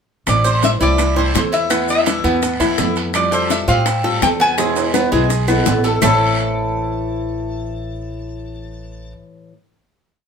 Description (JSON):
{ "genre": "latin, Cuban son and guajira", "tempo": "167 BPM", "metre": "4/4", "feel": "straight", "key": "A minor", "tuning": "A4 = 445 Hz", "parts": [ { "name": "lap resonator guitar", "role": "melody", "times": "0.3-9.1 s", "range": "C5 to A5", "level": "-19 LUFS", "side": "equal", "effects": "none" }, { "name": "flamenco guitar", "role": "accompaniment", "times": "0.3-9.5 s", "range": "A2 to F4", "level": "-22 LUFS", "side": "left 3 dB", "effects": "none" }, { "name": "upright bass", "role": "bass", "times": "0.3-9.1 s", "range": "A1 to A2", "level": "-22 LUFS", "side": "equal", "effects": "none" }, { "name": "bongos", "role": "percussion", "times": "0.3-6.1 s", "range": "none", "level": "-23 LUFS", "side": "left 5 dB", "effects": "none" }, { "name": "claves", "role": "percussion", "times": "0.3-6.1 s", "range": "none", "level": "-28 LUFS", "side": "right 4 dB", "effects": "none" }, { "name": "guiro", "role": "percussion", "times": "0.3-6.1 s", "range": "none", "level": "-29 LUFS", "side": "right 3 dB", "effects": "none" }, { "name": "maracas", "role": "percussion", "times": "0.3-6.1 s", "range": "none", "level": "-30 LUFS", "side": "right 5 dB", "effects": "none" }, { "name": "timbales", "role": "percussion", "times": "0.3-6.1 s", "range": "none", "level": "-24 LUFS", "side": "right 6 dB", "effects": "none" }, { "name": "Cuban tres", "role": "arpeggios", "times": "0.4-9.1 s", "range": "G#3 to C5", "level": "-21 LUFS", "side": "right 2 dB", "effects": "slapback echo" } ], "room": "moderate studio reverb, RT60 0.5 s", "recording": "band playing live in one room", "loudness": "-14 LUFS", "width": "side -6 dB against mid", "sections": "0.3-6.0 verse; 6.0-8.9 final chord", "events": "drum fill 4.6-6.0", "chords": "0.3 Am; 1.7 Esus4; 3.1 Fadd9; 4.6 E; 6.0 Am" }